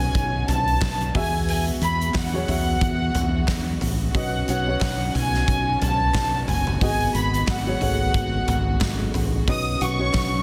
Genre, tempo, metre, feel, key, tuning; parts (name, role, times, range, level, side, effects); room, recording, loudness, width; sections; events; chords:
piano-driven pop; 90 BPM; 4/4; swing 56% on 16ths; E major; A4 = 441 Hz
warm studio violin section; melody; 0.0-10.4 s; F#5 to D#6; -28 LUFS; equal
dark upright piano; accompaniment; 0.0-10.4 s; B2 to F#5; -31 LUFS; equal
warm symphonic string section; sustained chords; 0.0-10.4 s; D#3 to F#4; -38 LUFS; equal
fingered electric bass; bass; 0.0-10.4 s; F#1 to E2; -28 LUFS; equal
huge arena drum kit; drums; 0.1-10.3 s; hi-hat, kick drum, snare drum, toms; -27 LUFS; equal
group handclap; percussion; 0.8-10.3 s; -42 LUFS; equal
light reverb; dense, heavily limited modern master; -22 LUFS; mono
0.0-10.4 A section
0.0 Badd9; 1.1 Eadd9; 4.1 Badd9; 6.8 G#m7; 9.5 Badd9